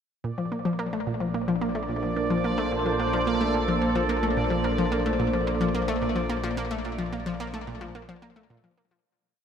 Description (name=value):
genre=ambient, sequencer-driven space music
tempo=109 BPM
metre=4/4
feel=straight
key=Bb major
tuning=A4 = 440 Hz
part: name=sweeping resonant pad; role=sustained chords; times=0.2-9.1 s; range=Bb2 to C5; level=-28 LUFS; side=right 1 dB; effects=chorus, shimmer reverb
part: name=analog pluck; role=riff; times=0.2-9.0 s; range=Bb2 to Bb3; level=-28 LUFS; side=left 1 dB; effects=chorus, ping-pong delay, shimmer reverb
part: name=round analog bass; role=bass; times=0.2-9.0 s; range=Bb1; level=-35 LUFS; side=equal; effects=none
part: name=bubbling stepped-filter texture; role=texture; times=0.2-9.1 s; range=D5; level=-34 LUFS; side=right 2 dB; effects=chorus, built-in reverb, shimmer reverb
room=wet cathedral reverb, RT60 6.2 s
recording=in a vast, echoing space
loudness=-24 LUFS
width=side -8 dB against mid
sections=0.2-9.0 A section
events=fade-out 6.1-9.1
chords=0.2 Bbmaj7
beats=| 0.24 0.79 1.34 1.89 | 2.44 2.99 3.54 4.09 | 4.65 5.20 5.75 6.30 | 6.85 7.40 7.95 8.50